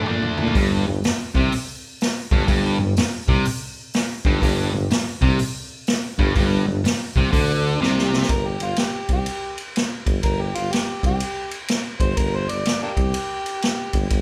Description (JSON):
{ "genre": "blues rock power trio and southern rock", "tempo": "124 BPM", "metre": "4/4", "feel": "swing 65% on 8ths", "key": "G minor", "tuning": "A4 = 440 Hz", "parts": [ { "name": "overdriven harmonica", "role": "melody", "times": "0.0, 8.3-14.2 s", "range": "Bb3 to D5", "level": "-30 LUFS", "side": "equal", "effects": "none" }, { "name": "sludgy distorted guitar", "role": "riff", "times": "0.0-8.3 s", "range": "G2 to D4", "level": "-24 LUFS", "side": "equal", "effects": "overdrive" }, { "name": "mellow tuba", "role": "bass", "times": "0.1-14.2 s", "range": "G1 to Bb2", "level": "-27 LUFS", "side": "equal", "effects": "none" }, { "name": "vintage drum kit", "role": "drums", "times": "0.1-14.2 s", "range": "hi-hat, kick drum, ride cymbal, snare drum, toms", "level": "-25 LUFS", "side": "equal", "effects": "none" } ], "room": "moderate large studio reverb, RT60 0.8 s", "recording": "band playing live in one room", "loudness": "-22 LUFS", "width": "mono", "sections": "0.5-8.3 A section; 8.3-14.2 B section", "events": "drum fill 0.0-0.5, 7.8-8.3; harmonica solo 8.3-14.2", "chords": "0.0 D5; 0.5 G5" }